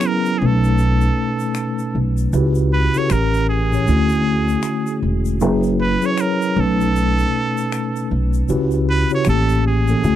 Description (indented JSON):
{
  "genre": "R&B, neo-soul",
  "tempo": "78 BPM",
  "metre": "4/4",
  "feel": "swing 61% on 16ths",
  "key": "unclear",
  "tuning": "A4 = 440 Hz",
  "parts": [
    { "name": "trumpet with straight mute", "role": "melody", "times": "0.0-10.2 s", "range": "G#4 to C#5", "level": "-23 LUFS", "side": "right 3 dB", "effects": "none" },
    { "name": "mellow tine electric piano", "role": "accompaniment", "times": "0.0-10.2 s", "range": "A2 to C#5", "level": "-19 LUFS", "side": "left 1 dB", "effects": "medium stereo tremolo" },
    { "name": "finger snaps and egg shaker", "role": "percussion", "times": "0.0-10.2 s", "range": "none", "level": "-34 LUFS", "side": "left 12 dB", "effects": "none" },
    { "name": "upright bass", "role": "bass", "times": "0.4-10.2 s", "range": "E1 to D2", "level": "-18 LUFS", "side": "equal", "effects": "none" }
  ],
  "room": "light reverb",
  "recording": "dry, close 1970s-style studio recording",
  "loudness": "-16 LUFS",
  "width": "side -12 dB against mid",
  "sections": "0.0-10.2 A section",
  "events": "none",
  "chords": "0.4 B9; 2.3 A13/C#; 3.1 A7b9; 3.9 Dmaj9#11; 5.4 F#7sus4; 6.6 B9; 8.5 Em69/C#; 9.2 A7b9",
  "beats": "0.02 0.79 1.56 | 2.33 3.10 3.87 4.63 | 5.40 6.17 6.94 7.71 | 8.48 9.25 10.02"
}